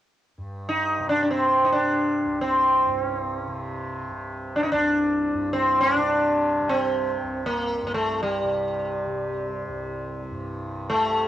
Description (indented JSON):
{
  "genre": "indian classical, Hindustani",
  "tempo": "free time",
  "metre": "none",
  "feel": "none",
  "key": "C raga kafi",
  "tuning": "A4 = 440 Hz",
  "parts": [
    { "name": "tanpura", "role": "drone", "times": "0.4-11.3 s", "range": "C2 to C3", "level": "-33 LUFS", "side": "equal", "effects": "cassette tape" },
    { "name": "sitar", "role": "melody", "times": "0.7-11.3 s", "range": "G3 to Eb4", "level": "-22 LUFS", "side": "equal", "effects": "none" }
  ],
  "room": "moderate booth ambience, RT60 0.2 s",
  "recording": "home recording on cassette",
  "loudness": "-22 LUFS",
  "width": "side -12 dB against mid",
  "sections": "0.4-11.3 A section",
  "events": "none",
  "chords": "none"
}